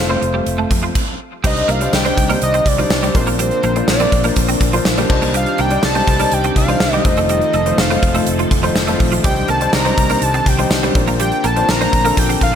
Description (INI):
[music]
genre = 1980s-style pop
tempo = 123 BPM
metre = 4/4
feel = straight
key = C dorian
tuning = A4 = 437 Hz
[part]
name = fat analog lead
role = melody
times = 0.0-12.6 s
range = C5 to Bb5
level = -20 LUFS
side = equal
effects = chorus, ping-pong delay
[part]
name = warm grand piano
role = accompaniment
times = 0.0-12.6 s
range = G3 to A5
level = -20 LUFS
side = left 3 dB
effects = none
[part]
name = string machine, full ensemble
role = sustained chords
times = 0.0-12.6 s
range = C3 to D5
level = -25 LUFS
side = left 1 dB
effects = phaser, ensemble chorus
[part]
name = fretless electric bass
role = bass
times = 0.0-12.6 s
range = F1 to F2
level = -21 LUFS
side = equal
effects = none
[part]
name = twelve-string electric guitar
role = riff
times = 0.1-12.4 s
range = F3 to C4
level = -24 LUFS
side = right 6 dB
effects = ensemble chorus, ping-pong delay
[part]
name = gated 80s drum kit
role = drums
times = 0.2-12.5 s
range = crash cymbal, hi-hat, kick drum, snare drum, tambourine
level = -18 LUFS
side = equal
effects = gated reverb
[part]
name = tambourine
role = percussion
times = 1.9-11.8 s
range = none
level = -33 LUFS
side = left 6 dB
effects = none
[sound]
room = light reverb, studio ambience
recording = none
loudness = -13 LUFS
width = side -8 dB against mid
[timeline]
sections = 0.0-1.4 A section; 1.4-12.6 B section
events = stop 1.0-1.4; grand piano fill 4.6-5.3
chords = 0.0 F; 1.4 Cmadd9; 3.1 Bbadd9; 5.1 Cmadd9; 7.1 F7; 9.2 Cmadd9; 11.0 Bbadd9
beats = 0.47 0.95 | 1.44 1.93 2.42 2.90 | 3.39 3.88 4.37 4.86 | 5.34 5.83 6.32 6.81 | 7.29 7.78 8.27 8.76 | 9.25 9.73 10.22 10.71 | 11.20 11.69 12.17